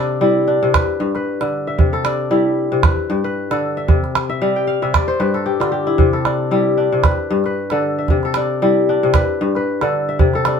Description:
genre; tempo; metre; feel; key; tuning
west african traditional, West African string and xylophone music; 114 BPM; 4/4; swing 55% on 16ths; C major; A4 = 440 Hz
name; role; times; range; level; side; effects
kora; arpeggios; 0.0-10.6 s; G2 to G5; -16 LUFS; left 2 dB; none
calabash; percussion; 0.7-10.6 s; none; -17 LUFS; right 3 dB; none
room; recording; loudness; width
wet studio reverb, RT60 0.5 s; band playing live in one room; -15 LUFS; side -7 dB against mid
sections
0.0-10.6 A section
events
kora fill 4.3-6.0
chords
0.0 C; 0.7 G; 1.8 C; 2.8 G; 3.9 C; 4.9 G5; 6.0 C; 7.0 G; 8.1 C; 9.1 G

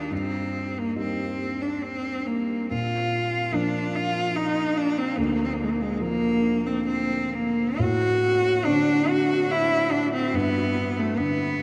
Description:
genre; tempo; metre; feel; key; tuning
classical, romantic duo for cello and grand piano; 62-74 BPM; 3/4; rubato; unclear; A4 = 440 Hz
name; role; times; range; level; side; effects
clear cello; melody; 0.0-11.6 s; Ab3 to F#4; -26 LUFS; equal; none
dark baby grand piano; accompaniment; 0.0-11.6 s; D2 to Eb4; -30 LUFS; equal; none
room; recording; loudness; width
wet huge ambient reverb, RT60 8.3 s; in a vast, echoing space; -25 LUFS; mono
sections
0.0-11.6 A section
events
none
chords
0.1 Eb/G; 2.7 Bb; 5.2 Bb/D; 7.8 D7/A; 10.3 G

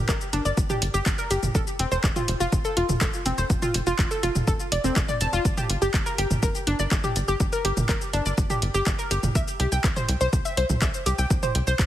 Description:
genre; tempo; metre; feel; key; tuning
melodic techno; 123 BPM; 4/4; straight; G minor; A4 = 440 Hz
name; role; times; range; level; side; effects
tight sequencer bass; bass; 0.0-11.9 s; F1 to C2; -27 LUFS; equal; sidechain pumping
analog pluck; arpeggios; 0.1-11.7 s; C4 to A5; -26 LUFS; equal; chorus, sidechain pumping, digital delay
deep house drum kit; drums; 0.1-11.9 s; handclaps, hi-hat, shaker, toms; -28 LUFS; equal; overdrive, small room reverb
electronic kick drum; drums; 0.1-11.9 s; none; -25 LUFS; equal; overdrive, small room reverb
room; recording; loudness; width
light reverb, digital ambience; heavily compressed radio sound; -22 LUFS; side -12 dB against mid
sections
0.0-11.9 A section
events
none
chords
0.0 Gm; 1.5 F; 5.5 Gm; 9.4 C

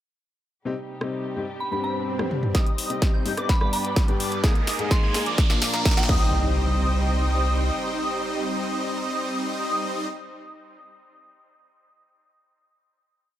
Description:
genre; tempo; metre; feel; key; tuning
EDM, festival progressive house; 127 BPM; 4/4; straight; C minor; A4 = 439 Hz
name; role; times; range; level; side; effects
warm grand piano; accompaniment; 0.7-10.1 s; G2 to Ab4; -32 LUFS; left 4 dB; sidechain pumping
muted studio string section; sustained chords; 0.7-10.1 s; B2 to Ab5; -36 LUFS; equal; vintage 12-bit sampler grit, sidechain pumping
big-room dance drum kit; drums; 1.0-6.2 s; crash cymbal, hi-hat, rim click, snare drum, toms; -28 LUFS; equal; high-pass filter on snare, high-pass filter on toms, high-pass filter on hats, high-pass filter on cymbals
soft synth bell; melody; 1.6-6.3 s; G5 to C6; -32 LUFS; right 1 dB; chorus, dub echo
swell, riser and impact; sound effects; 1.8-10.1 s; none; -32 LUFS; right 2 dB; none
plucky unison lead; arpeggios; 2.5-10.1 s; D6 to Ab6; -31 LUFS; equal; ensemble chorus, sidechain pumping, dub echo
supersaw chords; riff; 2.5-10.1 s; F3 to Ab5; -30 LUFS; equal; wide subtle chorus, sidechain pumping, low-pass filter, dub echo
saturated sub bass; bass; 2.5-7.7 s; G1 to G2; -23 LUFS; equal; sidechain pumping, high-pass filter
electronic kick drum; drums; 2.5-6.2 s; none; -21 LUFS; equal; none
room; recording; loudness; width
light reverb; none; -21 LUFS; side -12 dB against mid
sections
0.7-2.5 intro; 2.5-6.3 build; 6.3-10.1 final hit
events
swell 1.8-2.5; drum fill 2.2-2.5, 2.5-6.3; build-up 2.5-6.3; riser 2.5-6.3; filter sweep on supersaw synth 2.5-6.3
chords
0.7 Cm; 1.6 G; 2.5 Cm; 3.5 G; 4.4 Absus2; 5.4 Bb; 6.1 Cm

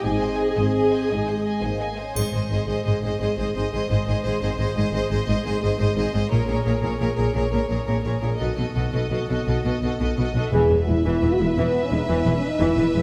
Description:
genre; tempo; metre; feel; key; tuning
cinematic, heroic adventure film score; 115 BPM (dotted quarters); 12/8; straight; Ab major; A4 = 440 Hz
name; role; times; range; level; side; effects
warm symphonic violin section; melody; 0.0-13.0 s; Db5 to Ab5; -34 LUFS; equal; none
clear studio violin section; second line; 0.0-13.0 s; Ab4 to Ab5; -34 LUFS; equal; none
dark symphonic viola section; accompaniment; 0.0-13.0 s; E3 to Ab4; -30 LUFS; equal; none
dark French horn section; sustained chords; 0.0-2.2, 10.5-13.0 s; Ab3 to G#4; -26 LUFS; equal; none
rich symphonic cello section; bass; 0.1-13.0 s; E2 to B2; -29 LUFS; equal; none
rich symphonic double bass section; bass; 0.1-13.0 s; E1 to B1; -29 LUFS; equal; none
triangle; percussion; 2.2-2.8 s; none; -37 LUFS; equal; none
timpani; percussion; 10.5-11.0 s; E2; -30 LUFS; equal; none
room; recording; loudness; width
moderate concert hall reverb, RT60 2.0 s; none; -23 LUFS; mono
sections
0.0-2.2 A section; 2.2-10.5 B section; 10.5-13.0 C section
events
none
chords
0.1 Ab; 6.3 Bbm7; 8.4 B7; 10.5 E

